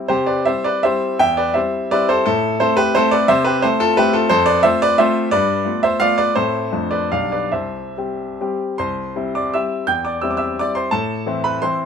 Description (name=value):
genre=classical, romantic triple-time dance for piano with dotted rhythms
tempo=128-190 BPM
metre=3/4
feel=rubato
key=C major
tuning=A4 = 440 Hz
part: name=clear baby grand piano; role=solo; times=0.0-11.9 s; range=B1 to G6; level=-16 LUFS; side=equal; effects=none
room=light reverb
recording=minimal, uncompressed stereo recording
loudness=-16 LUFS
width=side -7 dB against mid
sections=0.1-8.8 A section; 8.8-11.9 A section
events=none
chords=0.1 C; 1.2 C/E; 2.3 Am; 3.3 Am/C; 4.3 Fmaj7; 5.3 G9; 6.3 Am; 6.7 Dm7/F; 7.1 G7/B; 7.5 C; 9.9 C/E; 10.9 Am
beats=| 0.09 0.47 0.85 | 1.20 1.56 1.93 | 2.27 2.62 2.97 | 3.30 3.64 3.98 | 4.30 4.63 4.99 | 5.31 5.65 6.01 | 6.35 6.71 7.11 | 7.51 7.95 8.39 | 8.78 9.15 9.53 | 9.87 10.23 10.59 | 10.91 11.25 11.61